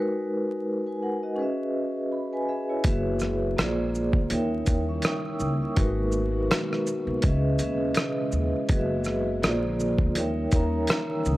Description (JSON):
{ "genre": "lo-fi hip hop", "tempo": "82 BPM", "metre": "4/4", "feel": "swing 56% on 16ths", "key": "C# dorian", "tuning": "A4 = 442 Hz", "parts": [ { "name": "vibraphone with medium mallets", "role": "accompaniment", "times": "0.0-11.4 s", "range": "F#3 to E6", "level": "-27 LUFS", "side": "equal", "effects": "low-pass filter" }, { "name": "string machine, cellos", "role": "sustained chords", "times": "2.8-11.4 s", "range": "B2 to F#4", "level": "-34 LUFS", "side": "right 1 dB", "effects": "ensemble chorus, low-pass filter" }, { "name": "upright bass", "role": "bass", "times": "2.8-11.4 s", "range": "F#1 to D#2", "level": "-28 LUFS", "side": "equal", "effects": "none" }, { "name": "dusty soul sampler-style drum kit", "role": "drums", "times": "2.8-11.4 s", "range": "hi-hat, kick drum, rim click, shaker", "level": "-25 LUFS", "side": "equal", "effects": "overdrive" } ], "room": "light reverb", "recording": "dry, gritty hardware recording, vinyl crackle", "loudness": "-24 LUFS", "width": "side -17 dB against mid", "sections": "0.0-2.8 A section; 2.8-11.4 B section", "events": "vibraphone fill 1.7-2.8", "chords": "0.0 G#m9; 1.4 C#m7; 2.8 F#9sus4; 3.6 A#7; 4.3 D#7b9; 5.8 G#m9; 7.2 C#m7; 8.7 F#9sus4; 9.4 A#7; 10.2 D#7b9", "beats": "0.65 1.38 2.11 | 2.84 3.57 4.30 5.04 | 5.77 6.50 7.23 7.96 | 8.69 9.43 10.16 10.89" }